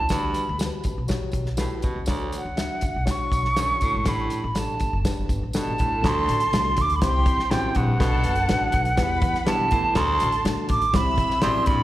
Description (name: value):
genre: uptempo 1960s-style soul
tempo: 122 BPM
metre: 4/4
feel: straight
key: D mixolydian from 6.0 s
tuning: A4 = 442 Hz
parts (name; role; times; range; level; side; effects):
- silver concert flute; melody; 0.0-11.8 s; F#5 to D6; -24 LUFS; right 1 dB; plate reverb, slapback echo, analog delay
- warm baritone saxophone; riff; 0.0-11.8 s; D2 to B2; -29 LUFS; right 2 dB; slapback echo
- upright bass; bass; 0.0-11.8 s; F#1 to E3; -27 LUFS; equal; none
- mellow reed electric piano; accompaniment; 0.1-11.8 s; A3 to E5; -31 LUFS; left 4 dB; tube saturation, plate reverb, slapback echo
- natural country drum kit; drums; 0.1-11.8 s; hi-hat, kick drum, snare drum; -26 LUFS; equal; none
- tambourine; percussion; 0.1-5.9 s; none; -42 LUFS; right 2 dB; none
- warm studio string section; second line; 6.0-11.7 s; G4 to E6; -34 LUFS; right 1 dB; plate reverb, slapback echo
room: light reverb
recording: live gig heard through the venue's PA, recital hall reverb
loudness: -20 LUFS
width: side -15 dB against mid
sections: 0.0-6.0 A section; 6.0-11.8 B section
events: none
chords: 0.1 Gmaj7; 2.1 Dmaj7; 4.1 A7sus4; 6.0 D; 7.0 C; 8.0 Bm7; 9.0 Em; 10.0 D; 10.9 C